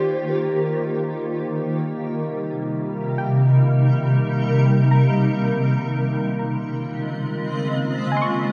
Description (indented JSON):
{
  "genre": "ambient",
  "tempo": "free time",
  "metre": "none",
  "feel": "none",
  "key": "unclear",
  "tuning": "A4 = 440 Hz",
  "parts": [
    { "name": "breathy flute-like synth lead", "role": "melody", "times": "0.0-1.0 s", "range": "Bb4 to C5", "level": "-34 LUFS", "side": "equal", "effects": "lush chorus, analog delay" },
    { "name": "granular cloud pad", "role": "sustained chords", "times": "0.0-8.5 s", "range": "C3 to Eb5", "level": "-22 LUFS", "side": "equal", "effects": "built-in reverb, ensemble chorus" },
    { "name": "soft round pluck", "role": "arpeggios", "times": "0.0-8.5 s", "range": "G5 to Db6", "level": "-34 LUFS", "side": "equal", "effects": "chorus, analog delay" },
    { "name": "analog drone", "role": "drone", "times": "0.0-8.5 s", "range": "Eb3 to Bb3", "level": "-29 LUFS", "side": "equal", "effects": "chorus" }
  ],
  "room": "wet cathedral reverb, RT60 5.3 s",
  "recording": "dreamy mix soaked in reverb, cassette tape",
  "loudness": "-21 LUFS",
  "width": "mono",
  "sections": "0.0-8.5 A section",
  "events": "fade-in on synth pluck 0.0-8.5",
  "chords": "0.0 Eb; 1.3 Cm7; 5.2 Dbmaj7"
}